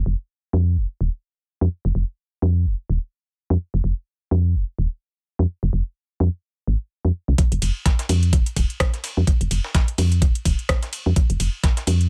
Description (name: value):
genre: minimal techno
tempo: 127 BPM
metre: 4/4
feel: swing 57% on 16ths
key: F minor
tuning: A4 = 439 Hz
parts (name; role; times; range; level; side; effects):
- woody FM bass; bass; 0.0-12.1 s; Eb1 to F2; -21 LUFS; equal; sidechain pumping
- breakbeat sampler-style drum kit; drums; 7.4-12.0 s; hi-hat, snare drum; -35 LUFS; equal; high-pass filter on hats, high-pass filter on snare
- electronic kick drum; drums; 7.4-11.7 s; none; -21 LUFS; equal; none
- garage drum kit; drums; 7.4-12.1 s; hi-hat, ride cymbal, rim click; -30 LUFS; equal; low-pass filter on hats, low-pass filter on cymbals, low-pass filter on snare
room: little or no reverb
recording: none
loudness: -22 LUFS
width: mono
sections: 0.0-7.4 A section; 7.4-12.1 B section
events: drop 7.4-12.1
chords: none